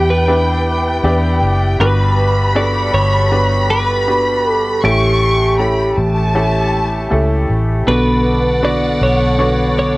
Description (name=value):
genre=pop ballad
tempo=79 BPM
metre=4/4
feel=straight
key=unclear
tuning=A4 = 438 Hz
part: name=twelve-string electric guitar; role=melody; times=0.0-10.0 s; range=G4 to D5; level=-18 LUFS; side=right 1 dB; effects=cassette tape
part: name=warm studio violin section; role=second line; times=0.0-10.0 s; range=F#5 to C#6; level=-20 LUFS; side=equal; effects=cassette tape
part: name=clear upright piano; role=accompaniment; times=0.0-10.0 s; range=G2 to D5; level=-19 LUFS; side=equal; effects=cassette tape
part: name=vintage muted fingered electric bass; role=bass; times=0.0-10.0 s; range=F#1 to E2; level=-16 LUFS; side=equal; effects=none
part: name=tonewheel organ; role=sustained chords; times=7.9-10.0 s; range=D3 to A4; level=-19 LUFS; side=equal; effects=overdrive, chorus vibrato, lush chorus, cassette tape
room=light reverb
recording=home recording on cassette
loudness=-12 LUFS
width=side -21 dB against mid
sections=0.0-10.0 A section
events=none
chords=0.0 Em7; 1.8 Gmaj7; 4.8 A7; 7.9 Bm7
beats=0.28 1.04 | 1.80 2.56 3.31 4.07 | 4.83 5.59 6.35 7.11 | 7.87 8.63 9.39